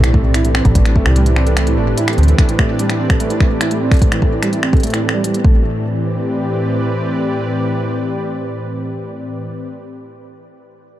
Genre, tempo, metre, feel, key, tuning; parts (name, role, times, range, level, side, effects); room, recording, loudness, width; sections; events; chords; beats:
IDM; 147 BPM; 4/4; straight; A minor; A4 = 440 Hz
warm analog pad; sustained chords; 0.0-9.7 s; A2 to D5; -20 LUFS; equal; chorus
felt-muted upright piano; arpeggios; 0.0-5.8 s; A2 to A4; -21 LUFS; right 2 dB; low-pass filter, tape echo
metallic FM bass; bass; 0.0-2.3 s; G1 to D2; -13 LUFS; equal
electronic kick drum; drums; 0.0-5.5 s; -13 LUFS; equal
organic electronic drum kit; drums; 0.0-5.4 s; finger snaps, hi-hat; -22 LUFS; equal; overdrive
pulsing gated texture; texture; 0.0-5.7 s; D4 to D5; -29 LUFS; right 1 dB; chorus, built-in reverb
light reverb; dark, warm production; -13 LUFS; side -13 dB against mid
0.0-5.6 A section; 5.6-8.9 B section
filter sweep on felt piano 0.0-5.6
0.0 Am11; 5.4 Asus4; 5.6 Am11
0.34 | 0.75 1.16 1.57 1.98 | 2.38 2.79 3.20 3.61 | 4.02 4.42 4.83 5.24 | 5.65 6.06 6.46 6.87 | 7.28 7.69 8.10 8.51